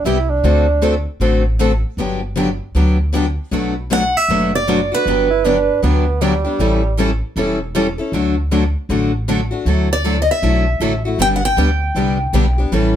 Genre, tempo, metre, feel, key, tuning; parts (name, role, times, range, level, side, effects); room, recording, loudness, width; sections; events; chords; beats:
acoustic string swing (jazz manouche); 156 BPM; 4/4; swing 62% on 8ths; G major; A4 = 437 Hz
warm bassoon; second line; 0.0-1.1, 5.3-7.0 s; G3 to E4; -19 LUFS; right 5 dB
upright bass; bass; 0.0-13.0 s; E1 to D2; -18 LUFS; equal
picked steel-string acoustic guitar; accompaniment; 0.1-12.9 s; B2 to A4; -19 LUFS; left 4 dB
picked steel-string acoustic guitar; accompaniment; 0.1-12.9 s; B2 to B4; -23 LUFS; right 3 dB
picked steel-string acoustic guitar; melody; 3.9-6.0, 9.9-12.5 s; B4 to G5; -17 LUFS; right 2 dB
light reverb; -14 LUFS; side -10 dB against mid
0.0-3.5 A section; 3.5-13.0 B section
0.4 D7; 2.0 Gmaj7; 3.5 Bm7; 5.1 Gmaj7; 6.6 A7; 8.1 D; 9.7 Dadd9; 11.2 G
0.05 | 0.44 0.82 1.21 1.59 | 1.98 2.37 2.75 3.13 | 3.52 3.90 4.29 4.67 | 5.06 5.44 5.83 6.21 | 6.59 6.98 7.36 7.75 | 8.13 8.51 8.89 9.28 | 9.66 10.04 10.43 10.81 | 11.19 11.57 11.96 12.34 | 12.72